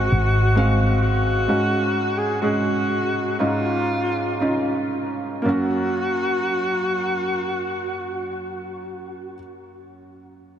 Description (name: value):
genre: pop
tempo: 57-67 BPM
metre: 4/4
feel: straight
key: F# major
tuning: A4 = 442 Hz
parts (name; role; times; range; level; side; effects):
- warm alto saxophone; melody; 0.0-9.3 s; E#4 to G#4; -24 LUFS; left 1 dB; none
- felt-muted upright piano; accompaniment; 0.0-10.6 s; F#2 to E#5; -24 LUFS; right 1 dB; none
- woody fretless electric bass; bass; 0.0-1.4 s; G#1; -18 LUFS; equal; lush chorus
room: moderate huge ambient reverb, RT60 4.2 s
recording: dreamy mix soaked in reverb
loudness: -19 LUFS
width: side -9 dB against mid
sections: 0.0-5.5 A section; 5.5-9.6 B section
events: slowing down 0.0-5.5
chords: 0.0 G#7; 1.5 C#sus4; 3.4 C#add9; 5.5 F#